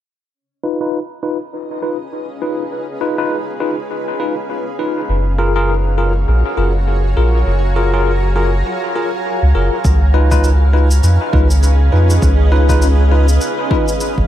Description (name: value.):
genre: ambient dub.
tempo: 101 BPM.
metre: 4/4.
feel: swing 58% on 16ths.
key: Db mixolydian.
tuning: A4 = 440 Hz.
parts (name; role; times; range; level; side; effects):
granular cloud pad; sustained chords; 1.4-14.3 s; Db4 to Bb5; -22 LUFS; right 1 dB; built-in reverb.
barky tine electric piano; stabs; 0.6-13.8 s; Eb4 to Cb5; -19 LUFS; left 2 dB; medium stereo tremolo, low-pass filter, dub echo.
soft dub sub bass; bass; 5.1-14.3 s; Gb1 to F2; -12 LUFS; equal; none.
cabasa; drums; 9.8-14.1 s; none; -27 LUFS; right 1 dB; none.
electronic kick drum; drums; 9.8-14.3 s; none; -19 LUFS; equal; overdrive.
room: light reverb, digital ambience.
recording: none.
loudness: -13 LUFS.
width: side -12 dB against mid.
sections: 0.3-9.8 A section; 9.8-14.3 B section.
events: fade-in on ambient pad 0.3-9.8; filter sweep on tine electric piano 0.3-9.8.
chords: 0.3 Db7; 5.1 Gbmaj7; 9.8 Db7.